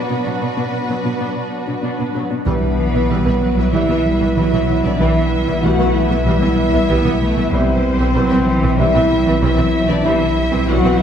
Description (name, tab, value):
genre	cinematic, hybrid orchestral and electronic film score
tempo	95 BPM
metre	4/4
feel	straight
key	unclear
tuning	A4 = 435 Hz
part	warm symphonic violin section	melody	0.0-10.9 s	B4 to E5	-34 LUFS	left 5 dB	none
part	rich symphonic violin section	second line	0.0-11.0 s	F#4 to F#5	-26 LUFS	left 2 dB	none
part	shimmering ambient pad	sustained chords	0.0-11.0 s	E3 to E5	-24 LUFS	right 1 dB	chorus, built-in reverb
part	soft round pluck	arpeggios	0.0-10.9 s	C3 to B4	-24 LUFS	equal	chorus, phaser, ping-pong delay
part	rich symphonic viola section	accompaniment	0.1-10.9 s	E3 to D4	-24 LUFS	right 1 dB	none
part	rich symphonic cello section	bass	0.1-11.0 s	B2 to B3	-23 LUFS	right 1 dB	none
part	clear trombone section	sustained chords	2.5-10.3 s	G3 to E4	-26 LUFS	equal	none
part	warm French horn section	sustained chords	2.5-11.0 s	B3 to F#4	-19 LUFS	left 1 dB	none
part	punchy sub bass	bass	2.5-11.0 s	B1	-21 LUFS	equal	none
part	rich symphonic double bass section	bass	2.5-10.9 s	B1	-23 LUFS	right 2 dB	none
room	wet scoring stage reverb, RT60 1.5 s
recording	heard from further back in the room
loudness	-14 LUFS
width	side -8 dB against mid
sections	0.0-2.5 A section; 2.5-11.0 B section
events	none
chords	0.0 Bm; 2.5 Em/B; 7.5 C/B